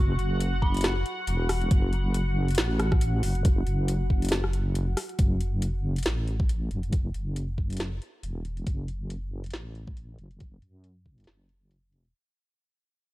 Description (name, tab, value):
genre	deep dubstep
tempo	138 BPM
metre	4/4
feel	swing 56% on 16ths, half-time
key	unclear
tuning	A4 = 440 Hz
part	dark detuned synth bell	melody	0.0-1.0 s	B5 to C#6	-40 LUFS	equal	chorus, dub echo
part	deep dark ambient pad	sustained chords	0.0-5.2 s	F#4 to F#5	-35 LUFS	left 1 dB	chorus, built-in reverb
part	deep soft wobble bass	bass	0.0-12.1 s	E1 to F#2	-27 LUFS	equal	chorus
part	garage drum kit	drums	0.2-12.1 s	hi-hat, rim click, snare drum	-31 LUFS	equal	low-pass filter on snare, small room ambience, low-pass filter on hats
part	electronic kick drum	drums	0.6-11.2 s	none	-24 LUFS	equal	overdrive, small room ambience
room	little or no reverb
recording	none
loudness	-24 LUFS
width	side -17 dB against mid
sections	0.0-5.2 A section; 5.2-12.1 B section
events	drop 0.0-5.2; fade-out 5.2-12.1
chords	0.0 F#5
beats	0.41 0.84 1.27 | 1.71 2.14 2.58 3.01 | 3.45 3.88 4.32 4.75 | 5.19 5.62 6.06 6.49 | 6.93 7.36 7.80 8.23 | 8.66 9.10 9.54 9.97 | 10.40 10.84 11.27 11.71